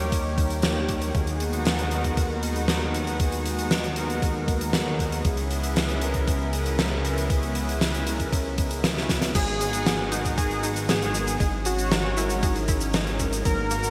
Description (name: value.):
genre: synthwave.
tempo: 117 BPM.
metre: 4/4.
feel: straight.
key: G# minor.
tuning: A4 = 435 Hz.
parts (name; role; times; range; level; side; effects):
lush unison pad; sustained chords; 0.0-13.9 s; C#3 to G4; -34 LUFS; equal; chorus, sidechain pumping.
mellow synth brass; stabs; 0.0-13.9 s; G3 to C#5; -34 LUFS; equal; chorus, digital delay.
chorused synth bass; bass; 0.0-13.9 s; G#1 to D#2; -31 LUFS; equal; none.
electronic kick drum; drums; 0.1-13.6 s; none; -28 LUFS; equal; none.
huge arena drum kit; drums; 0.1-13.9 s; crash cymbal, hi-hat, shaker, snare drum; -30 LUFS; equal; gated reverb.
unison lead; melody; 9.3-13.9 s; F#4 to A#4; -31 LUFS; equal; delay.
analog pluck; arpeggios; 9.4-13.9 s; F#3 to G#4; -37 LUFS; equal; none.
room: moderate lush hall reverb, RT60 2.8 s.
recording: bright 1980s-style digital production.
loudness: -25 LUFS.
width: mono.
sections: 0.0-9.4 A section; 9.4-13.9 B section.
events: drum fill 9.0-9.4.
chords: 0.0 D#; 1.1 G#m7/D#; 5.2 C#m7; 9.4 G#m7; 11.4 C#madd9/G#.